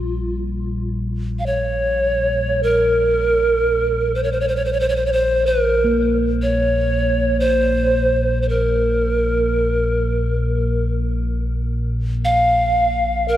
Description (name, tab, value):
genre	world meditative, free-time meditation music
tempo	free time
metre	none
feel	none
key	Bb kumoi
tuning	A4 = 440 Hz
part	reedy pan flute	melody	0.0-13.4 s	F4 to F5	-18 LUFS	equal	tape echo
part	deep rumbling drone	drone	0.0-13.4 s	Bb1	-22 LUFS	equal	built-in reverb, analog chorus
part	bronze singing bowl	texture	0.0-13.4 s	G3 to Bb3	-28 LUFS	right 2 dB	none
room	wet plate reverb, RT60 2.7 s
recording	dreamy mix soaked in reverb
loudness	-16 LUFS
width	side -12 dB against mid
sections	0.0-13.4 A section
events	none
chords	none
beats	free time